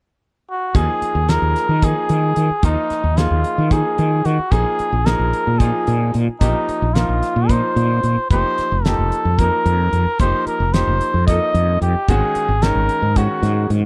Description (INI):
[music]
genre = electric jazz fusion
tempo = 222 BPM (eighths)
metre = 7/8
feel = straight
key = unclear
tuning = A4 = 441 Hz
[part]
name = trumpet with cup mute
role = melody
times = 0.5-13.7 s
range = Eb4 to Eb5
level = -22 LUFS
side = equal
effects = none
[part]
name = bright grand piano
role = accompaniment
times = 0.7-13.8 s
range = Eb3 to Bb4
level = -27 LUFS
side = equal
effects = none
[part]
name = mellow fretless electric bass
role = bass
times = 0.7-13.9 s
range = F1 to Eb3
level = -20 LUFS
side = equal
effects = none
[part]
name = damped 70s drum kit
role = drums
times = 0.7-13.8 s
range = hi-hat, kick drum, snare drum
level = -20 LUFS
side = equal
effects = none
[sound]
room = little or no reverb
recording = dry, close 1970s-style studio recording, lossy compression artefacts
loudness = -18 LUFS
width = mono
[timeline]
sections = 0.8-13.9 A section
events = none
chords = 0.0 N.C.; 0.8 Ebsus24; 4.5 Bb9sus4; 8.3 F9sus4; 12.1 Ab9sus4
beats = 0.21 0.48 | 0.75 1.02 1.29 1.56 1.83 2.10 2.37 | 2.63 2.90 3.17 3.44 3.71 3.98 4.25 | 4.52 4.79 5.06 5.33 5.60 5.87 6.14 | 6.41 6.68 6.96 7.23 7.50 7.77 8.04 | 8.31 8.58 8.85 9.12 9.39 9.66 9.93 | 10.20 10.47 10.74 11.01 11.28 11.55 11.82 | 12.09 12.36 12.63 12.90 13.17 13.44 13.71